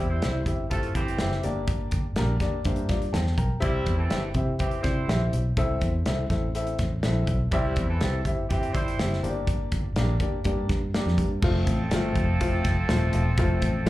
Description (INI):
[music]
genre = uptempo 1960s-style soul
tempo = 123 BPM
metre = 4/4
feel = straight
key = C mixolydian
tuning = A4 = 440 Hz
[part]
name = warm horn section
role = second line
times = 0.0-13.9 s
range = C3 to C5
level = -32 LUFS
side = right 2 dB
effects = slapback echo
[part]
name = clear grand piano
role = accompaniment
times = 0.0-13.9 s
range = A3 to Bb5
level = -30 LUFS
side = left 3 dB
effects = slapback echo
[part]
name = fingered electric bass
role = bass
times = 0.0-13.9 s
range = Eb1 to C3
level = -26 LUFS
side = equal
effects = none
[part]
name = natural country drum kit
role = drums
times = 0.2-13.9 s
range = crash cymbal, hi-hat, kick drum, snare drum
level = -28 LUFS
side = equal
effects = none
[sound]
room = little or no reverb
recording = live gig heard through the venue's PA, club reverb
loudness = -23 LUFS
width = side -16 dB against mid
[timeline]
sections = 0.0-11.4 A section; 11.4-13.9 B section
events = grand piano fill 2.2-3.6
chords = 0.0 C; 1.4 Gm; 3.6 C; 5.6 Am; 7.5 C; 9.2 Gm; 11.4 F